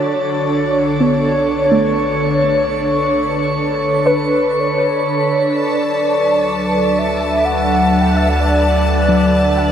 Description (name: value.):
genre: ambient.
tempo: 63 BPM.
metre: 3/4.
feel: straight.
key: D major.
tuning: A4 = 440 Hz.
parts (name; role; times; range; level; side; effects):
warm velvety synth lead; melody; 0.0-9.7 s; B4 to G5; -16 LUFS; equal; chorus, tape echo.
ethereal airy pad; sustained chords; 0.0-9.7 s; D3 to B4; -18 LUFS; right 1 dB; ensemble chorus, built-in reverb.
soft round pluck; arpeggios; 0.0-9.7 s; F#3 to F#5; -22 LUFS; right 1 dB; none.
round analog bass; bass; 0.0-9.7 s; B1 to D2; -23 LUFS; equal; none.
bowed-like drone; drone; 0.1-9.7 s; D3; -34 LUFS; left 1 dB; none.
clear chamber violin section; texture; 5.5-9.7 s; A5; -23 LUFS; left 2 dB; none.
room: wet shimmer reverb, RT60 8.3 s.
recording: none.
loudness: -13 LUFS.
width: side -9 dB against mid.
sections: 0.0-5.5 A section; 5.5-9.7 B section.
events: fade-out on analog synth bass 0.0-5.5.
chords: 0.0 Bm9; 5.5 D6.